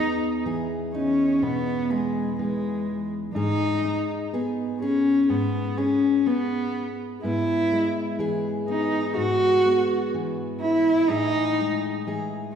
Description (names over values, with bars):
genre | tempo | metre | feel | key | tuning
acoustic folk duo or small band | 62 BPM | 4/4 | straight | E major | A4 = 440 Hz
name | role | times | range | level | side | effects
warm cello | melody | 0.0-12.1 s | G#3 to F#4 | -23 LUFS | equal | none
fingerpicked steel-string acoustic guitar | accompaniment | 0.0-12.6 s | E2 to G#4 | -27 LUFS | equal | none
room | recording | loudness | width
wet scoring stage reverb, RT60 2.1 s | recorded in a church or concert hall | -22 LUFS | side -8 dB against mid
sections
0.0-12.6 A section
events
none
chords
0.0 Emaj7; 3.4 G#m; 7.2 E/G#; 11.1 Amaj7(no3)